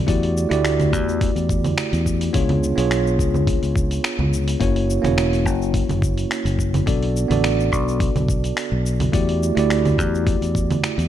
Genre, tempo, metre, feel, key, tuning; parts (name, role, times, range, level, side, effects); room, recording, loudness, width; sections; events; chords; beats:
sunset chillout; 106 BPM; 4/4; swing 54% on 16ths; A4 = 440 Hz
bell-like tine electric piano; accompaniment; 0.0-11.1 s; A3 to D5; -22 LUFS; moving between left 5 dB and right 5 dB; auto-pan, digital delay
fingered electric bass; bass; 0.1-11.1 s; E1 to E2; -22 LUFS; equal
dusty soul sampler-style drum kit; drums; 0.1-11.1 s; congas, finger snaps, hi-hat, shaker; -25 LUFS; right 2 dB; overdrive
electronic kick drum; drums; 0.1-10.7 s; -23 LUFS; equal; overdrive
light reverb, digital ambience; dark, warm production; -17 LUFS; side -11 dB against mid
0.0-11.1 A section
0.1 Em11; 2.3 C#7b9; 4.6 F#7; 6.9 Bm7; 9.1 Em11
| 0.08 0.65 1.21 1.78 | 2.34 2.91 3.48 4.04 | 4.61 5.17 5.74 6.31 | 6.87 7.44 8.00 8.57 | 9.14 9.70 10.27 10.83